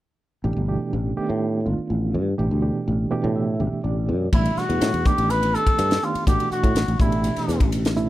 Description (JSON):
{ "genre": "electric jazz fusion", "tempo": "124 BPM", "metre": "4/4", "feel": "straight", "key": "unclear", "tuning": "A4 = 440 Hz", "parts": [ { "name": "barky reed electric piano", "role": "accompaniment", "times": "0.4-8.1 s", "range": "B2 to G5", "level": "-26 LUFS", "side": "right 3 dB", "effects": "overdrive, fast tremolo" }, { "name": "sustaining fretless electric bass", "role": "bass", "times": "0.4-8.1 s", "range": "G1 to A2", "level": "-23 LUFS", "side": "equal", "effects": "wide subtle chorus" }, { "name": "trumpet with cup mute", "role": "melody", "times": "4.3-7.7 s", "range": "E4 to B4", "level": "-24 LUFS", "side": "left 1 dB", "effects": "none" }, { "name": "crisp fusion drum kit", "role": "drums", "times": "4.3-8.1 s", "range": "crash cymbal, hi-hat, kick drum, ride cymbal, snare drum", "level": "-23 LUFS", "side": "left 1 dB", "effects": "none" } ], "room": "little or no reverb", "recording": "none", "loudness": "-20 LUFS", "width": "side -15 dB against mid", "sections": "0.4-4.3 A section; 4.3-8.1 B section", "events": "reed electric piano fill 2.9-4.3", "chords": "0.4 Asus2; 1.2 B7alt/A; 2.4 Em7/A; 3.1 Asus2; 5.1 B7alt/A; 6.3 Esus2/A; 7.0 Asus2" }